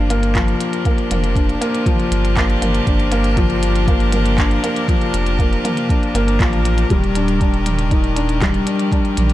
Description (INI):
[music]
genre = piano and strings electronica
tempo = 119 BPM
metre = 4/4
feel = straight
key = G minor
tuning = A4 = 440 Hz
[part]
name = bright string quartet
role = sustained chords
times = 0.0-9.3 s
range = Eb3 to Bb4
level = -24 LUFS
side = left 1 dB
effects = none
[part]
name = felt-muted upright piano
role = riff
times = 0.0-9.3 s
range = F3 to Eb4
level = -19 LUFS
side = left 2 dB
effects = tape echo
[part]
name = warm sub bass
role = bass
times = 0.0-9.3 s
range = Eb1 to Bb1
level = -19 LUFS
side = equal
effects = sidechain pumping
[part]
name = minimal click drum kit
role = drums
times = 0.1-9.3 s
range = handclaps, hi-hat, toms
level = -26 LUFS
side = right 1 dB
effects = none
[part]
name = electronic kick drum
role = drums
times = 0.3-9.0 s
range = none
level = -18 LUFS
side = equal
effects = none
[sound]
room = light reverb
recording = none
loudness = -14 LUFS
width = side -14 dB against mid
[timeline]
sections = 0.0-9.3 A section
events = none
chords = 0.0 Gm7; 6.9 Ebmaj7